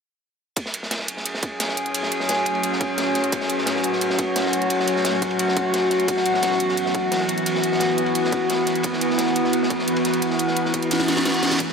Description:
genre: dark technical drum and bass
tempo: 174 BPM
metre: 4/4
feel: straight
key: F# minor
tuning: A4 = 440 Hz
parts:
  - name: metallic inharmonic drone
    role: sustained chords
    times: 1.2-11.7 s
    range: E3 to G#4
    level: -21 LUFS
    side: equal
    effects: chorus, built-in reverb, sidechain pumping
  - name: crunchy breakbeat drum kit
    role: drums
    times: 0.6-11.7 s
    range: ride cymbal, snare drum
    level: -28 LUFS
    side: equal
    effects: high-pass filter on cymbals, high-pass filter on snare, high-pass filter on room
  - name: drum and bass drum kit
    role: drums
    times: 0.6-11.7 s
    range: hi-hat, snare drum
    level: -26 LUFS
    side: right 1 dB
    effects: overdrive
  - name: electronic kick drum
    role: drums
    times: 0.6-11.7 s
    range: none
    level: -28 LUFS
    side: equal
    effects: overdrive, high-pass filter on kick
  - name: granular cloud pad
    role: texture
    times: 2.0-11.7 s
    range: A3 to A5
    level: -35 LUFS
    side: equal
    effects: built-in reverb, ensemble chorus, sidechain pumping
  - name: reverse cymbal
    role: sound effects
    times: 11.0-11.6 s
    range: none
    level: -25 LUFS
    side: right 1 dB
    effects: none
room: wet huge ambient reverb, RT60 8.4 s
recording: dreamy mix soaked in reverb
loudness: -19 LUFS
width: side -5 dB against mid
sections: 0.6-11.7 A section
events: fade-in on ambient pad 0.6-11.7; kick drops out 10.9-11.6; drum fill 10.9-11.6; reverse cymbal 11.0-11.6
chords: 0.6 F#madd9; 6.1 Eadd9

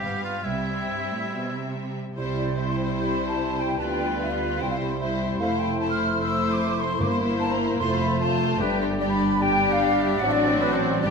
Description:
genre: classical, dramatic, fast romantic movement for symphony orchestra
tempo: 149 BPM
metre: 4/4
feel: straight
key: C major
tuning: A4 = 442 Hz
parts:
  - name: warm symphonic violin section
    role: melody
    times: 0.0-11.1 s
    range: F#4 to F5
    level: -33 LUFS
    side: left 4 dB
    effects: none
  - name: warm oboe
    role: second line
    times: 0.0-11.1 s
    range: E4 to D5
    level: -34 LUFS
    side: equal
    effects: none
  - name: warm symphonic violin section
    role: second line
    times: 0.0-11.1 s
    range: B3 to F4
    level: -34 LUFS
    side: left 2 dB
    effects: none
  - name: warm symphonic viola section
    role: accompaniment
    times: 0.0-11.1 s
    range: G3 to D4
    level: -30 LUFS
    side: right 1 dB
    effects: none
  - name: warm symphonic cello section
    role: bass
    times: 0.0-11.1 s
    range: F2 to D3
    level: -33 LUFS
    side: right 3 dB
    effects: none
  - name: warm symphonic double bass section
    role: bass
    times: 0.0-11.1 s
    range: F1 to D2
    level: -32 LUFS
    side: right 6 dB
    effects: none
  - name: clear clarinet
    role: second line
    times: 2.2-11.1 s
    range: D4 to F4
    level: -34 LUFS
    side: left 2 dB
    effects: none
  - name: small flute group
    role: second line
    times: 2.2-11.1 s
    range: B4 to F6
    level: -27 LUFS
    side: left 1 dB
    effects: none
  - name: dark bassoon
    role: accompaniment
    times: 2.2-11.1 s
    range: F#3 to Bb3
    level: -33 LUFS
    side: right 3 dB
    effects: none
  - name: mellow French horn section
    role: sustained chords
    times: 2.2-11.1 s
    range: F#3 to F4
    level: -31 LUFS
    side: left 6 dB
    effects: none
  - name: timpani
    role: percussion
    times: 7.0-7.6 s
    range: G2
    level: -33 LUFS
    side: equal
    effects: none
room: wet recital hall reverb, RT60 1.4 s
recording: none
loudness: -22 LUFS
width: side -5 dB against mid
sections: 0.0-2.2 A section; 2.2-11.1 B section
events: none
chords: 0.0 G7; 0.5 C; 3.8 G7/D; 4.6 C; 5.4 Fmaj7; 7.0 C7/G; 7.8 F; 8.6 G5; 10.2 D7/A

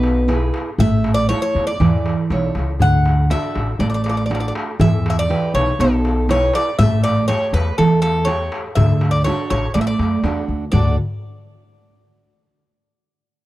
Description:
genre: greek folk, Greek bouzouki band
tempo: 121 BPM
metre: 4/4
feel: straight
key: D major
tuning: A4 = 440 Hz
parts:
  - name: Greek bouzouki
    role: melody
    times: 0.0-11.0 s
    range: A4 to F#5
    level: -21 LUFS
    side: left 1 dB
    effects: none
  - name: picked steel-string acoustic guitar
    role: accompaniment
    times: 0.0-11.0 s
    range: B2 to C#5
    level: -20 LUFS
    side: right 3 dB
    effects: none
  - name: upright bass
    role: bass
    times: 0.0-11.0 s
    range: A1 to F#2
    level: -20 LUFS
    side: left 1 dB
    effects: none
  - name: darbuka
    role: percussion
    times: 0.0-11.0 s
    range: none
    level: -22 LUFS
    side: left 2 dB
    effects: none
room: small room ambience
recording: dry, close 1970s-style studio recording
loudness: -15 LUFS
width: side -16 dB against mid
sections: 0.0-10.7 A section; 10.7-12.7 B section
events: speeding up 0.0-12.7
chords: 0.0 E; 0.8 A; 2.8 D; 4.8 Em; 6.8 A7; 8.8 D

